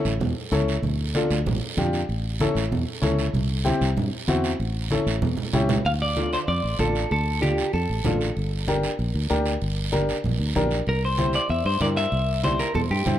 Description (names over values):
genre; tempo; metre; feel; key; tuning
latin, cumbia; 191 BPM; 4/4; straight; D minor from 5.9 s; A4 = 442 Hz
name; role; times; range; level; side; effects
warm upright piano; accompaniment; 0.0-13.2 s; C4 to D5; -27 LUFS; left 2 dB; none
fingered electric bass; bass; 0.1-13.2 s; G1 to G2; -25 LUFS; equal; none
guiro; percussion; 0.1-13.2 s; none; -34 LUFS; right 6 dB; none
congas; percussion; 0.2-13.2 s; none; -29 LUFS; right 2 dB; none
clean electric guitar; melody; 5.9-8.2, 10.9-13.2 s; G4 to F5; -26 LUFS; equal; spring reverb
room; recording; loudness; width
light reverb; dark, warm production; -21 LUFS; side -11 dB against mid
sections
0.0-5.9 A section; 5.9-13.2 B section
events
drum fill 4.9-5.9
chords
0.0 A; 0.8 Dm; 2.1 A; 3.3 C; 4.6 A7; 5.9 Dm; 8.4 Gm; 10.9 C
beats
0.21 0.52 | 0.83 1.15 1.46 1.78 | 2.09 2.40 2.72 3.03 | 3.34 3.66 3.97 4.29 | 4.60 4.91 5.23 5.54 | 5.85 6.17 6.48 6.79 | 7.11 7.42 7.74 8.05 | 8.36 8.68 8.99 9.30 | 9.62 9.93 10.24 10.56 | 10.87 11.18 11.50 11.81 | 12.12 12.44 12.75 13.06